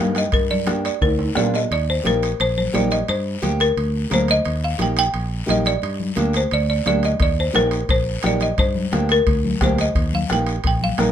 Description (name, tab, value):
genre	latin, cumbia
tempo	175 BPM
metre	4/4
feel	straight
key	unclear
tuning	A4 = 440 Hz
part	folk marimba with hard mallets	melody	0.0-11.1 s	Bb4 to G5	-21 LUFS	equal	none
part	nylon-string guitar	accompaniment	0.0-11.1 s	Bb3 to Bb4	-24 LUFS	right 2 dB	none
part	fingered electric bass	bass	0.0-11.1 s	Bb1 to Bb2	-23 LUFS	equal	none
part	timbales	percussion	0.1-11.1 s	none	-30 LUFS	right 6 dB	none
part	bombo	percussion	0.2-1.5, 7.2-11.1 s	none	-23 LUFS	left 1 dB	none
part	guiro	percussion	0.2-11.1 s	none	-35 LUFS	left 6 dB	none
part	congas	percussion	0.3-11.1 s	none	-26 LUFS	left 4 dB	none
room	moderate studio reverb, RT60 0.5 s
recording	minimal, uncompressed stereo recording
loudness	-17 LUFS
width	side -10 dB against mid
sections	0.0-1.7 A section; 1.7-11.1 B section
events	drum fill 1.0-1.7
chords	0.3 Gm; 1.7 Eb; 3.1 Gm; 4.5 Eb; 5.8 Gm; 7.2 Eb; 8.6 Gm; 10.0 Eb